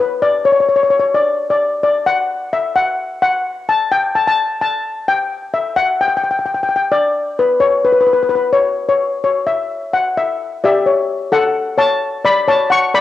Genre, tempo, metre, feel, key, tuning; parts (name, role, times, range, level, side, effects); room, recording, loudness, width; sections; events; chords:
calypso; 130 BPM; 4/4; straight; D major; A4 = 440 Hz
steel pan; solo; 0.0-13.0 s; G4 to C#6; -13 LUFS; left 3 dB; cassette tape
moderate spring reverb, RT60 1.7 s, small room ambience; home recording on cassette; -13 LUFS; side -13 dB against mid
0.0-11.3 A section; 11.3-13.0 B section
0.0 N.C.; 11.3 Dmaj7